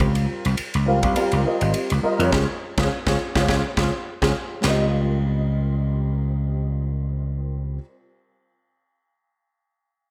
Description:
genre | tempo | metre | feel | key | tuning
electric jazz fusion | 104 BPM | 4/4 | swing 56% on 16ths | Db lydian | A4 = 440 Hz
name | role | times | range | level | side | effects
dark concert grand piano | accompaniment | 0.0-7.8 s | G3 to F5 | -27 LUFS | equal | ensemble chorus
vintage slap bass | bass | 0.0-7.8 s | Ab1 to F2 | -24 LUFS | equal | none
crisp fusion drum kit | drums | 0.0-4.8 s | kick drum, ride cymbal, snare drum | -29 LUFS | equal | gated reverb
room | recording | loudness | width
moderate lush hall reverb, RT60 1.7 s, small room ambience | bright 1980s-style digital production | -22 LUFS | mono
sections
0.0-4.6 A section; 4.6-7.0 B section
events
band accent 2.3-4.6; drum fill 4.1-4.6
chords
0.0 Dbmaj9#11

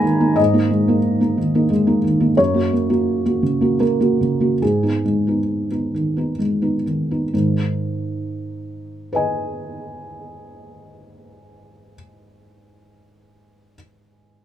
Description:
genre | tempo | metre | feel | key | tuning
neoclassical minimalist piano | 63-91 BPM | 3/4 | rubato | G# minor | A4 = 440 Hz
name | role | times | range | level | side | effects
felt-muted upright piano | solo | 0.0-14.4 s | F#2 to B5 | -17 LUFS | right 1 dB | none
room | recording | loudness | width
little or no reverb | close, detailed microphones | -17 LUFS | side -11 dB against mid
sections
0.0-7.3 A section; 7.3-12.8 B section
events
slowing down 1.4-7.3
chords
0.0 G#sus2; 2.4 F#; 4.6 G#m

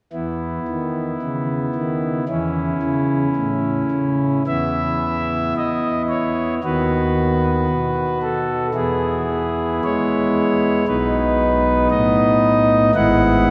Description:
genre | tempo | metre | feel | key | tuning
classical, chorale-style piece for pipe organ | 56 BPM | 4/4 | uneven beats, rubato | E major | A4 = 441 Hz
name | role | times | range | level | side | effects
pipe organ, principal | solo | 0.1-13.5 s | G#1 to F#5 | -19 LUFS | equal | none
room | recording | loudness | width
wet cathedral reverb, RT60 5.0 s | heard from further back in the room | -19 LUFS | mono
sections
0.1-4.5 A section; 4.5-13.5 B section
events
none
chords
0.1 E5; 2.3 A/E; 4.5 E5; 6.6 B/D#; 8.7 E; 10.9 B; 12.9 E/G#

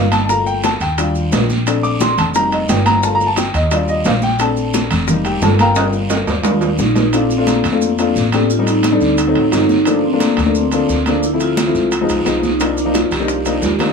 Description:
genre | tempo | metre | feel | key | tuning
Afro-Cuban jazz | 175 BPM | 4/4 | straight | Bb major | A4 = 440 Hz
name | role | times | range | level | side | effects
warm baby grand piano | accompaniment | 0.0-13.9 s | F3 to D6 | -17 LUFS | left 3 dB | none
upright bass | bass | 0.0-13.9 s | F1 to F2 | -20 LUFS | equal | none
bongos | percussion | 0.1-7.1, 12.6-13.9 s | none | -25 LUFS | left 6 dB | none
congas | percussion | 0.1-13.9 s | none | -23 LUFS | right 1 dB | none
guiro | percussion | 0.1-13.9 s | none | -28 LUFS | right 2 dB | none
maracas | percussion | 0.1-13.9 s | none | -30 LUFS | right 4 dB | none
timbales | percussion | 0.1-13.9 s | none | -22 LUFS | right 4 dB | none
vibraphone with medium mallets | melody | 6.8-13.9 s | A3 to G4 | -17 LUFS | right 2 dB | none
room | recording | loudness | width
moderate club reverb, RT60 0.5 s | small room ambience | -13 LUFS | side -5 dB against mid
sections
0.0-7.1 A section; 7.1-13.9 B section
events
grand piano solo 0.0-7.1; drum fill 5.8-7.1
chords
0.3 Gm7; 1.0 Ebmaj7; 1.7 Bbmaj7; 2.3 F7sus4; 3.0 Gm7; 3.7 Ebmaj7; 4.4 Bbmaj7; 5.1 F7sus4; 5.8 Gm7; 6.4 Ebmaj7; 7.1 Bbmaj9; 8.5 Am7b5; 9.2 D7b9; 9.9 Gm9; 11.2 Dm7; 11.9 Db9; 12.6 Cm11

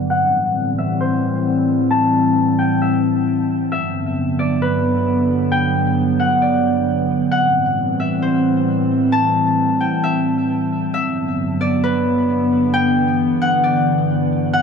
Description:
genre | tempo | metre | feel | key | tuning
hip hop | 133 BPM | 4/4 | half-time | G major | A4 = 440 Hz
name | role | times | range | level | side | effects
Celtic harp | melody | 0.0-14.6 s | B4 to A5 | -20 LUFS | left 1 dB | low-pass filter, ping-pong delay
warbly tape-like pad | sustained chords | 0.0-14.6 s | G2 to C4 | -17 LUFS | equal | chorus, built-in reverb, low-pass filter
room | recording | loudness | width
light reverb, small room ambience | dark, warm production | -15 LUFS | side -6 dB against mid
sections
0.0-10.9 A section; 10.9-14.6 B section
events
filter sweep 0.0-10.9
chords
0.1 Am7; 3.7 Gmaj7; 7.3 Am7; 10.9 Gmaj7

